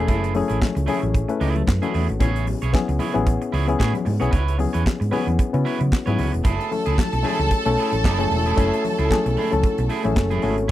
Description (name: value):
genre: disco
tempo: 113 BPM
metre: 4/4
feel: swing 56% on 16ths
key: F# minor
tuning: A4 = 440 Hz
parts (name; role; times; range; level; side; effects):
- barky reed electric piano; accompaniment; 0.0-10.7 s; A3 to B4; -24 LUFS; left 5 dB; overdrive, spring reverb
- electric guitar at the edge of break-up; accompaniment; 0.0-10.7 s; A3 to C#5; -29 LUFS; right 7 dB; none
- hollow-body short-scale fingered electric bass; bass; 0.0-10.7 s; E1 to C#3; -23 LUFS; right 1 dB; none
- modern studio drum kit; drums; 0.1-10.7 s; handclaps, hi-hat, kick drum, snare drum; -20 LUFS; right 1 dB; none
- congas; percussion; 0.1-10.6 s; none; -31 LUFS; left 5 dB; none
- clear symphonic string section; second line; 6.4-10.7 s; A4 to A5; -27 LUFS; right 1 dB; none
- mellow French horn section; sustained chords; 6.4-10.7 s; F#3 to A4; -28 LUFS; right 3 dB; none
room: little or no reverb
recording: dry, close 1970s-style studio recording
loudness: -18 LUFS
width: side -13 dB against mid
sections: 0.0-6.5 A section; 6.5-10.7 B section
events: none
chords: 0.0 F#m9; 2.2 Amaj7; 4.3 C#m7; 6.5 F#m9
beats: | 0.09 0.62 1.15 1.68 | 2.21 2.74 3.27 3.80 | 4.33 4.86 5.39 5.92 | 6.45 6.98 7.51 8.04 | 8.57 9.10 9.63 10.16 | 10.69